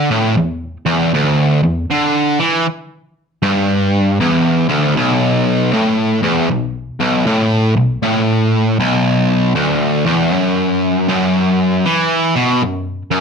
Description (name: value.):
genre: rock.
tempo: 78 BPM.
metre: 4/4.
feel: swing 64% on 8ths.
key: unclear.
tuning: A4 = 440 Hz.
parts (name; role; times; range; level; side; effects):
distorted electric guitar; solo; 0.0-13.2 s; B1 to E3; -13 LUFS; equal; overdrive.
room: wet club reverb, RT60 0.8 s.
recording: none.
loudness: -13 LUFS.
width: side -6 dB against mid.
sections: 0.0-13.2 A section.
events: none.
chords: none.